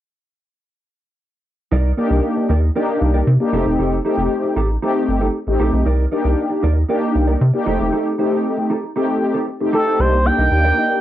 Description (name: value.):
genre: funk.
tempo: 116 BPM.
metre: 4/4.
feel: straight.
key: C dorian.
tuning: A4 = 439 Hz.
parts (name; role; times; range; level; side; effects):
mellow electric guitar; riff; 1.7-10.9 s; Eb4 to Eb5; -24 LUFS; right 4 dB; wide subtle chorus, cassette tape.
rubbery square bass; bass; 1.7-10.7 s; E1 to C3; -17 LUFS; equal; none.
mellow synth brass; accompaniment; 2.0-11.0 s; A3 to G4; -19 LUFS; left 2 dB; chorus, cassette tape.
expressive portamento lead; melody; 9.7-11.0 s; A4 to G5; -16 LUFS; right 1 dB; chorus, cassette tape.
room: light reverb.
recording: home recording on cassette.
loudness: -15 LUFS.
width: side -12 dB against mid.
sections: 1.7-10.0 A section; 10.0-11.0 B section.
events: none.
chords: 1.7 Cm9; 3.5 F9; 5.9 Cm9; 7.7 F9 (rootless); 10.0 Cm9.